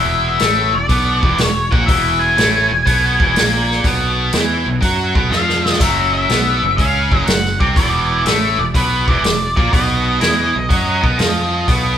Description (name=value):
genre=blues rock power trio and southern rock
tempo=122 BPM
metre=4/4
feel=swing 68% on 8ths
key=B mixolydian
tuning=A4 = 440 Hz
part: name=octave-fuzz lead guitar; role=melody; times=0.0-12.0 s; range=B4 to G#5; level=-18 LUFS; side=left 2 dB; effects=distortion
part: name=tight distorted guitar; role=riff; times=0.0-12.0 s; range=E2 to F#4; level=-18 LUFS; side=right 1 dB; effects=distortion
part: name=fingered electric bass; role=bass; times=0.0-12.0 s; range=E1 to F#2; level=-21 LUFS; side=equal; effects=none
part: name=vintage drum kit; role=drums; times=0.4-11.8 s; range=hi-hat, kick drum, snare drum, splash cymbal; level=-18 LUFS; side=equal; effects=none
room=moderate stone room reverb, RT60 1.2 s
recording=band playing live in one room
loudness=-13 LUFS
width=side -9 dB against mid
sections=0.0-12.0 A section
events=drum fill 5.3-5.8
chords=0.0 E7; 3.8 B5; 5.8 F#5; 7.8 E5; 9.7 B5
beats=0.41 0.90 1.39 | 1.88 2.37 2.86 3.35 | 3.84 4.33 4.82 5.31 | 5.80 6.29 6.78 7.27 | 7.76 8.25 8.74 9.23 | 9.72 10.21 10.70 11.19 | 11.69